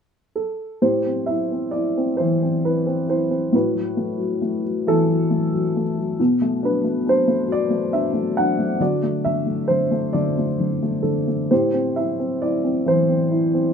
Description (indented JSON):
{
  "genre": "classical, lyrical solo piano",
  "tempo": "45 BPM (dotted quarters)",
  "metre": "6/8",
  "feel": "rubato",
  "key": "A dorian",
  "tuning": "A4 = 440 Hz",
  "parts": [
    { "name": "dark upright piano", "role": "solo", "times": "0.4-13.7 s", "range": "A2 to F#5", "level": "-18 LUFS", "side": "equal", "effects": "none" }
  ],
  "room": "light reverb",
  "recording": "minimal, uncompressed stereo recording",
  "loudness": "-18 LUFS",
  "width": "side -7 dB against mid",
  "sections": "0.8-13.7 A section",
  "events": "none",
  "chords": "0.0 N.C.; 0.8 Am7; 3.5 B7sus4/A; 6.2 Bm7; 8.8 D; 11.5 Am7",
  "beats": "| 0.83 2.20 | 3.54 4.87 | 6.19 7.49 | 8.79 10.14 | 11.51 12.88"
}